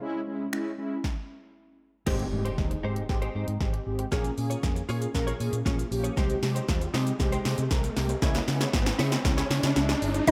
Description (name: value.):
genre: dance-pop.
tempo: 117 BPM.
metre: 4/4.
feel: straight.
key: Ab major.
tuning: A4 = 440 Hz.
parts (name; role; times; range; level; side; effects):
mellow synth brass; accompaniment; 0.0-10.3 s; Ab3 to Bb4; -35 LUFS; equal; chorus, phaser, sidechain pumping.
deep house drum kit; drums; 0.5-10.3 s; crash cymbal, finger snaps, hi-hat, kick drum, shaker, snare drum; -31 LUFS; equal; none.
direct-recorded clean electric guitar; riff; 2.1-10.2 s; Eb4 to Db5; -39 LUFS; equal; ensemble chorus.
vintage muted fingered electric bass; bass; 2.1-10.3 s; G1 to Db3; -33 LUFS; equal; sidechain pumping.
riser and impact; sound effects; 2.1-10.3 s; none; -37 LUFS; equal; none.
mallet-like synth pluck; melody; 10.3 s; Eb5; -18 LUFS; equal; chorus.
room: moderate lush hall reverb, RT60 1.9 s, digital ambience.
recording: rough home demo mix.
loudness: -28 LUFS.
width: mono.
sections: 0.0-2.1 A section; 2.1-10.3 B section.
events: stop 1.0-2.1; build-up 2.1-10.3; drum fill 2.1-10.3; impact 2.1-4.1; riser 2.1-10.3.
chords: 0.0 Dbm; 1.0 N.C.; 2.1 Abmaj7; 4.1 Bbm7; 6.2 Abmaj7/C; 8.2 Dbm.